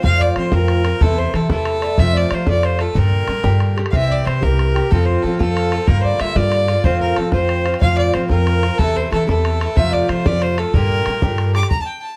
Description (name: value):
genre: celtic folk, Celtic jig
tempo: 123 BPM (dotted quarters)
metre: 6/8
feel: straight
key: unclear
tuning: A4 = 440 Hz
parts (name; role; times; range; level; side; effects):
- bright fiddle; melody; 0.0-12.2 s; A4 to D6; -24 LUFS; equal; none
- mellow hollow long shakuhachi; second line; 0.0-11.5 s; A4 to F5; -29 LUFS; equal; none
- Irish bouzouki; accompaniment; 0.0-11.7 s; G2 to G4; -25 LUFS; equal; none
- upright bass; bass; 0.0-11.6 s; C2 to G3; -20 LUFS; equal; none
- bodhran; percussion; 0.0-11.8 s; none; -23 LUFS; equal; none
room: light reverb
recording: dark, warm production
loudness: -17 LUFS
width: mono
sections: 0.0-3.9 A section; 3.9-11.7 A section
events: none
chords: 0.0 F; 1.0 Am/E; 2.0 F; 3.0 Gm; 3.9 C; 4.9 F; 5.9 Gm7; 6.8 F; 8.8 Am/E; 9.8 F; 10.7 Gm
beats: | 0.03 0.52 | 1.01 1.50 | 1.98 2.47 | 2.96 3.44 | 3.93 4.42 | 4.91 5.39 | 5.88 6.36 | 6.85 7.34 | 7.82 8.31 | 8.79 9.28 | 9.76 10.25 | 10.74 11.22 | 11.71